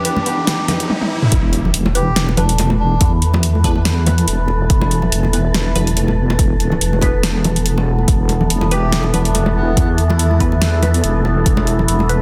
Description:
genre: deep dubstep.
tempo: 142 BPM.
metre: 4/4.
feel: swing 55% on 16ths, half-time.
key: E minor.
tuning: A4 = 440 Hz.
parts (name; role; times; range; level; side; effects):
melodica; melody; 0.0-3.8, 8.7-10.4 s; B3 to G4; -28 LUFS; equal; dub echo.
overtone-sweeping drone; sustained chords; 0.2-12.2 s; E3 to D5; -27 LUFS; equal; chorus, built-in reverb.
deep house drum kit; drums; 0.0-12.2 s; hi-hat, snare drum, toms; -22 LUFS; equal; none.
riser and impact; sound effects; 0.0-3.0 s; none; -26 LUFS; equal; none.
filtered dub chord stab; stabs; 0.1-12.2 s; E3 to B4; -29 LUFS; equal; phaser, lush chorus, dub echo.
congas; percussion; 0.2-12.1 s; none; -25 LUFS; equal; dub echo.
deep soft wobble bass; bass; 0.3-12.2 s; E1 to E2; -19 LUFS; equal; chorus, high-pass filter.
electronic kick drum; drums; 1.3-11.6 s; none; -18 LUFS; equal; none.
wind-like tuned noise texture; texture; 2.4-12.2 s; A4; -30 LUFS; equal; built-in reverb.
room: light reverb.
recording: dense, heavily limited modern master.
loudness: -16 LUFS.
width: mono.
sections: 0.0-1.3 A section; 1.3-12.2 B section.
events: build-up 0.0-1.3; riser 0.0-1.3; filter sweep on synth stab 0.0-1.3; drum fill 0.9-1.3; drop 1.3-12.2; impact 1.3-3.0.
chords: 0.0 E5.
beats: 0.05 0.47 0.90 | 1.32 1.74 2.16 2.59 | 3.01 3.43 3.85 4.28 | 4.70 5.12 5.54 5.97 | 6.39 6.81 7.23 7.66 | 8.08 8.50 8.93 9.35 | 9.77 10.19 10.62 11.04 | 11.46 11.88.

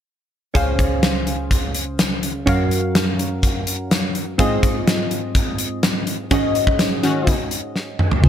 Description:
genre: 1980s-style pop.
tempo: 125 BPM.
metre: 4/4.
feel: straight.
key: Ab mixolydian.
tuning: A4 = 440 Hz.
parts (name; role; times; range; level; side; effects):
glassy digital keys; accompaniment; 0.5-8.3 s; Db2 to F5; -21 LUFS; equal; chorus, phaser.
gated 80s drum kit; drums; 0.6-8.3 s; crash cymbal, hi-hat, kick drum, snare drum, toms; -19 LUFS; equal; gated reverb.
funky polysynth comp; stabs; 6.3-7.3 s; Eb3 to Gb4; -22 LUFS; left 3 dB; chorus.
vintage muted fingered electric bass; bass; 8.2-8.3 s; Db2; -8 LUFS; equal; none.
room: light reverb, studio ambience.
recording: none.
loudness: -17 LUFS.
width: side -9 dB against mid.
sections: 0.6-8.2 A section.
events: band accent 6.3-8.2; drum fill 7.8-8.2.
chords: 0.6 Dbmaj7; 2.5 Gbmaj7; 4.4 Fm7/Ab; 6.3 Ab7sus4.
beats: | 0.55 1.03 1.51 1.99 | 2.47 2.95 3.43 3.91 | 4.39 4.87 5.35 5.83 | 6.31 6.79 7.27 7.75 | 8.23.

